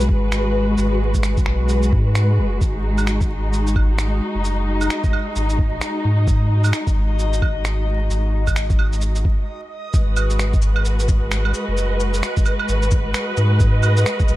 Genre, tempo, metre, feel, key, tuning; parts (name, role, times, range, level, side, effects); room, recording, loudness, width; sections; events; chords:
future garage; 131 BPM; 4/4; swing 61% on 16ths; G# minor; A4 = 440 Hz
muted symphonic string section; sustained chords; 0.0-14.4 s; G#3 to B4; -24 LUFS; left 1 dB; sidechain pumping
warm sub bass; bass; 0.0-14.4 s; F#1 to G#2; -19 LUFS; equal; tube saturation, sidechain pumping
electronic shaker, finger snaps, claves and cabasa; drums; 0.0-14.4 s; -27 LUFS; right 3 dB; studio reverb
electronic kick drum; drums; 0.1-14.3 s; -18 LUFS; equal; studio reverb
backwards swelling texture; texture; 4.1-14.4 s; D#5; -32 LUFS; right 1 dB; built-in reverb
little or no reverb; dark, warm production, vinyl crackle; -16 LUFS; side -16 dB against mid
0.0-9.9 A section; 9.9-14.4 B section
stop 9.5-9.9
0.0 G#m7; 2.6 D#m; 9.9 G#m7